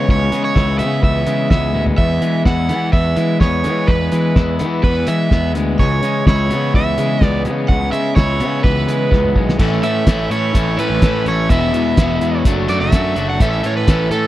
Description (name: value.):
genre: indie rock.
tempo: 126 BPM.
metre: 4/4.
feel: straight.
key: A major.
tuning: A4 = 439 Hz.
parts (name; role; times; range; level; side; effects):
crunchy overdriven guitar; melody; 0.0-14.3 s; A4 to F#5; -20 LUFS; right 3 dB; tape echo.
electric guitar at the edge of break-up; riff; 0.0-14.3 s; E2 to A4; -19 LUFS; left 3 dB; none.
fuzz picked electric bass; bass; 0.0-14.3 s; E1 to E3; -19 LUFS; equal; overdrive.
cloth-damped thuddy drum kit; drums; 0.1-14.2 s; crash cymbal, hi-hat, kick drum, snare drum, toms; -14 LUFS; equal; none.
room: little or no reverb.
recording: dry, close 1970s-style studio recording.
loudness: -13 LUFS.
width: side -14 dB against mid.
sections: 0.0-9.6 A section; 9.6-14.3 B section.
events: drum fill 1.7, 9.1-9.6; overdriven electric guitar solo 9.6-14.3.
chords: 0.0 C#m7; 2.0 E; 5.8 C#m7; 9.6 A; 11.5 E; 12.4 D/F#; 13.4 A.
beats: | 0.08 0.55 1.03 1.50 | 1.98 2.45 2.93 3.40 | 3.88 4.36 4.83 5.31 | 5.78 6.26 6.74 7.21 | 7.69 8.16 8.64 9.12 | 9.59 10.07 10.54 11.02 | 11.50 11.97 12.45 12.92 | 13.40 13.88.